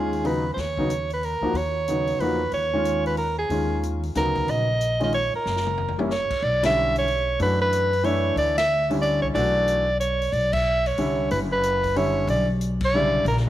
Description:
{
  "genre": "modal jazz",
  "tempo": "184 BPM",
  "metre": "3/4",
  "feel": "swing 63% on 8ths",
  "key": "Eb minor, B minor from 6.4 s",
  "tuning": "A4 = 440 Hz",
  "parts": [
    { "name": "warm soprano saxophone", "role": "melody", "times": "0.0-13.4 s", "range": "Ab4 to E5", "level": "-23 LUFS", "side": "right 1 dB", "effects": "none" },
    { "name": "clear baby grand piano", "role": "accompaniment", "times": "0.0-13.3 s", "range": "Db3 to Gb4", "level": "-27 LUFS", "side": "left 2 dB", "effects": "none" },
    { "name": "upright bass", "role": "bass", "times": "0.0-13.5 s", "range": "Gb1 to F#2", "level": "-27 LUFS", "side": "equal", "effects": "none" },
    { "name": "swinging big-band drum kit", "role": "drums", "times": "0.1-13.5 s", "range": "crash cymbal, hi-hat, kick drum, ride cymbal, snare drum, toms", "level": "-37 LUFS", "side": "left 4 dB", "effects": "none" }
  ],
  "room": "light reverb, small room ambience",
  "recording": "1960s-style stereo",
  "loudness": "-20 LUFS",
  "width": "side -13 dB against mid",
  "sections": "0.0-6.4 A section; 6.4-13.5 B section",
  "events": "drum fill 5.5-6.1; band accent 6.6, 8.5, 10.5, 12.8",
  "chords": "0.0 Ebm11; 5.5 Gb; 6.4 Bm11"
}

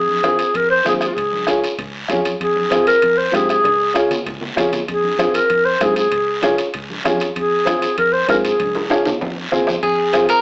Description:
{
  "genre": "latin, cumbia",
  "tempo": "194 BPM",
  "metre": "4/4",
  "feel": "straight",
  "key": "F minor",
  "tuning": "A4 = 440 Hz",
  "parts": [
    { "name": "breathy clarinet", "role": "second line", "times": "0.0-9.0 s", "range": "F4 to C5", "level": "-15 LUFS", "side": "equal", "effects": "none" },
    { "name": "fingered electric bass", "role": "bass", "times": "0.0-10.3 s", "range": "Db2 to Ab2", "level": "-31 LUFS", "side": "equal", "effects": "none" },
    { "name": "congas", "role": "percussion", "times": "0.1-10.3 s", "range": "none", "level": "-29 LUFS", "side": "equal", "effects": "none" },
    { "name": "dark upright piano", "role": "accompaniment", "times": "0.2-10.4 s", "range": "C4 to Ab4", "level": "-19 LUFS", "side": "equal", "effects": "none" },
    { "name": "bombo", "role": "percussion", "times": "0.2-10.3 s", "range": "none", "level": "-25 LUFS", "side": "equal", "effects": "none" },
    { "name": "guiro", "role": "percussion", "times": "0.2-10.4 s", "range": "none", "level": "-28 LUFS", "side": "equal", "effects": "none" },
    { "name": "timbales", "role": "percussion", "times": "0.2-10.4 s", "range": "none", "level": "-27 LUFS", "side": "right 1 dB", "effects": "none" },
    { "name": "electric guitar at the edge of break-up", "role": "melody", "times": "9.8-10.4 s", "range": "Ab4 to Bb4", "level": "-14 LUFS", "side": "equal", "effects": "spring reverb, slapback echo" }
  ],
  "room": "moderate large studio reverb, RT60 0.9 s",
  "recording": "AM radio sound",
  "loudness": "-14 LUFS",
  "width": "side -27 dB against mid",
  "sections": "0.0-9.8 A section",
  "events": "clarinet solo 0.0-9.8; drum fill 3.6-4.9, 8.6-9.8",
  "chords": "0.0 Fm; 1.2 Db; 2.4 Fm; 3.6 Db; 4.9 Fm; 6.1 Db; 7.4 Fm; 8.6 Db; 9.2 Fm"
}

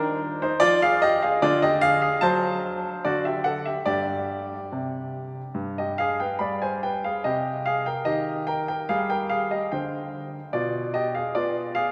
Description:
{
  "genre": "classical-period piano sonatina",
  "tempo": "73 BPM",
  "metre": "4/4",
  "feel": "rubato",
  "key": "C minor",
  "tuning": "A4 = 440 Hz",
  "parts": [
    { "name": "clear baby grand piano", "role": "solo", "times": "0.0-11.9 s", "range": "G2 to B5", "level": "-25 LUFS", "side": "equal", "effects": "none" }
  ],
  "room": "wet church reverb, RT60 3.6 s",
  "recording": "recorded in a church or concert hall",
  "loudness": "-25 LUFS",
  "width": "mono",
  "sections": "0.0-11.9 A section",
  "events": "none",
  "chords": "0.0 Ebmaj7(no3); 0.6 Ddim/F; 2.2 D7/F#; 3.9 Gsus4; 5.6 G; 7.3 Cm; 10.6 G7/B"
}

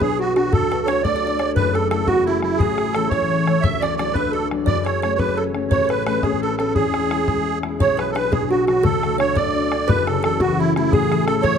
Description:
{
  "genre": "celtic folk, Celtic jig",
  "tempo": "115 BPM (dotted quarters)",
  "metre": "6/8",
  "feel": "straight",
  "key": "unclear",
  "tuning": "A4 = 440 Hz",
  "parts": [
    { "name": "musette accordion", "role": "melody", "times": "0.0-11.6 s", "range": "E4 to E5", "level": "-22 LUFS", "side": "right 4 dB", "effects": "plate reverb, tape echo" },
    { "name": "kalimba", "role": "second line", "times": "0.0-11.6 s", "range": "E4 to E5", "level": "-24 LUFS", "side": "right 2 dB", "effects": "none" },
    { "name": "concert harp", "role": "accompaniment", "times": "0.0-11.6 s", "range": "D1 to F#4", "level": "-22 LUFS", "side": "left 5 dB", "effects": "none" },
    { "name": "bodhran", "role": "percussion", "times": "0.0-11.6 s", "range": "none", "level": "-23 LUFS", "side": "left 2 dB", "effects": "none" }
  ],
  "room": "wet small room reverb, RT60 0.6 s",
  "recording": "dark, warm production",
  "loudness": "-17 LUFS",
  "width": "side -7 dB against mid",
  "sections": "0.0-7.8 A section; 7.8-11.6 A section",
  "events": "none",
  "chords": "0.0 Bm; 0.5 D; 1.6 F#m7; 2.6 A; 3.6 D6; 4.7 F#m; 5.7 Aadd9; 6.8 E; 7.8 Bm; 8.8 D; 9.9 F#m7; 10.9 A"
}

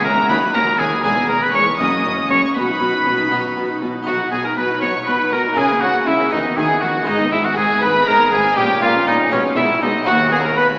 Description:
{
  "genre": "classical, baroque-style concerto movement with solo episodes",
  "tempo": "80 BPM (dotted quarters)",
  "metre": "6/8",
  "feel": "straight",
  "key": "B major",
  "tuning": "A4 = 440 Hz",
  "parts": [
    { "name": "clear oboe", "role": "melody", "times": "0.0-10.7 s", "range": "C#4 to D#5", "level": "-17 LUFS", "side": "equal", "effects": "none" },
    { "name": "rich chamber violin section", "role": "melody", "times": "0.0-10.8 s", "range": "C#5 to D#6", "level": "-23 LUFS", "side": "equal", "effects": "none" },
    { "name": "rich chamber violin section", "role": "second line", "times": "0.0-10.7 s", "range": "C#4 to D#6", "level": "-20 LUFS", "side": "equal", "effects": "none" },
    { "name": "harpsichord", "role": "accompaniment", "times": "0.0-10.8 s", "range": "C#2 to G#4", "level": "-25 LUFS", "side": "equal", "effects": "none" },
    { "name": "warm chamber viola section", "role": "accompaniment", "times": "0.0-10.6 s", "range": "D#3 to F#4", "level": "-25 LUFS", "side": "equal", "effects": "none" },
    { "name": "rich chamber double bass section", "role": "bass", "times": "0.0-10.7 s", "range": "E1 to D#2", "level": "-31 LUFS", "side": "equal", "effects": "none" },
    { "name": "warm chamber cello section", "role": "bass", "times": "0.0-10.7 s", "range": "C#2 to D#3", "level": "-26 LUFS", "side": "equal", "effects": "none" }
  ],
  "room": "wet cathedral reverb, RT60 5.7 s",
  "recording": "recorded in a church or concert hall, AM radio sound",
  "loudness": "-14 LUFS",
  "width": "side -30 dB against mid",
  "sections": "0.0-4.1 A section; 4.1-10.8 A section",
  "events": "none",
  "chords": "0.3 D#m; 1.0 E; 1.8 F#; 2.6 B; 5.6 A#dim/C#; 6.3 B/D#; 7.1 G#m; 8.6 D#9/A#; 9.3 G#m/B; 10.1 B/D#"
}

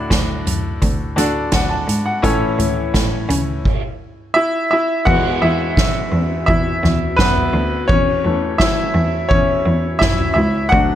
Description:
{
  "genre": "piano-driven pop",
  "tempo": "85 BPM",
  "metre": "4/4",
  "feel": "straight",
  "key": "A major",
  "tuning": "A4 = 440 Hz",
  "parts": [
    { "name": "clear baby grand piano", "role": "accompaniment", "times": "0.0-11.0 s", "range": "A2 to A5", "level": "-18 LUFS", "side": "left 1 dB", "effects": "none" },
    { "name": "rich cello", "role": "bass", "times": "0.0-11.0 s", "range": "C#2 to C#3", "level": "-20 LUFS", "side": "equal", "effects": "none" },
    { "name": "soft-mallet drum kit", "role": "drums", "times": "0.1-10.9 s", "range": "crash cymbal, hi-hat, kick drum, ride cymbal, snare drum, toms", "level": "-19 LUFS", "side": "equal", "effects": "none" }
  ],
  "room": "light reverb, small room ambience",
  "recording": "none",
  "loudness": "-14 LUFS",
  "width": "side -11 dB against mid",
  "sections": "0.0-5.1 A section; 5.1-11.0 B section",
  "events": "grand piano solo 5.1-11.0",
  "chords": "0.0 D; 2.2 A; 5.1 E; 7.9 A/E"
}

